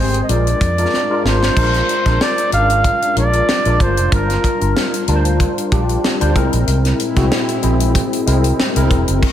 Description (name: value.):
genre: polished 1980s jazz-funk pop.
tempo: 94 BPM.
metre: 4/4.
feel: swing 54% on 16ths.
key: unclear.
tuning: A4 = 440 Hz.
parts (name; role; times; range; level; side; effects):
breathy flugelhorn; melody; 0.0-4.7 s; Bb4 to F5; -18 LUFS; equal; none.
tine electric piano; accompaniment; 0.0-9.3 s; G3 to G5; -19 LUFS; left 2 dB; medium stereo tremolo, ensemble chorus.
vintage muted fingered electric bass; bass; 0.0-9.2 s; E1 to F2; -17 LUFS; equal; none.
tight funk drum kit; drums; 0.1-9.3 s; crash cymbal, hi-hat, kick drum, snare drum; -19 LUFS; equal; none.
warm analog pad; sustained chords; 6.7-9.2 s; Bb2 to E4; -26 LUFS; left 2 dB; chorus.
room: moderate concert hall reverb, RT60 2.0 s, small room reverb.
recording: big arena sound, faint mains hum.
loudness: -13 LUFS.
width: side -10 dB against mid.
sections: 0.0-1.6 A section; 1.6-9.3 B section.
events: drum fill 0.9-1.6.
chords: 0.3 Bb7; 4.1 Gm7; 6.4 Caug7.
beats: 0.29 0.93 | 1.57 2.21 2.85 3.48 | 4.12 4.76 5.40 6.04 | 6.68 7.31 7.95 8.59 | 9.23.